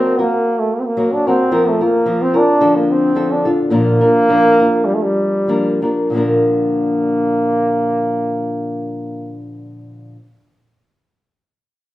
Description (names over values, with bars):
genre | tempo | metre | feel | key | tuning
mexican folk | 94-112 BPM | 4/4 | swing 54% on 8ths | Bb major | A4 = 437 Hz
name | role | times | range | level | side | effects
clear trombone | melody | 0.0-9.4 s | G3 to D4 | -16 LUFS | right 1 dB | none
nylon-string guitar | accompaniment | 0.0-10.2 s | Bb2 to Bb4 | -17 LUFS | left 1 dB | none
room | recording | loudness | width
wet large studio reverb, RT60 1.2 s | band playing live in one room | -13 LUFS | side -15 dB against mid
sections
0.0-6.1 A section; 6.1-8.7 B section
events
slowing down 1.5-6.1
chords
0.0 Ebm (rootless); 1.5 Fsus4; 2.6 Dm; 3.7 Bb